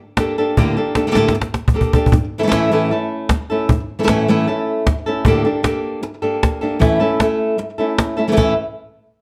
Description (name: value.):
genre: flamenco.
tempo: 154 BPM.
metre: 4/4.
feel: straight.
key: unclear.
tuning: A4 = 440 Hz.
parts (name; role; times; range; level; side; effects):
flamenco guitar; melody; 0.2-8.5 s; A2 to A4; -19 LUFS; equal; slapback echo.
cajon; percussion; 0.2-8.5 s; none; -19 LUFS; equal; none.
room: light reverb.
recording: close, detailed microphones.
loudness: -17 LUFS.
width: mono.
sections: 0.0-8.4 A section.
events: drum fill 1.2-2.1.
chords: 0.0 Gmadd9/A; 2.1 A; 5.3 Gmadd9/A; 6.8 A; 8.4 A5.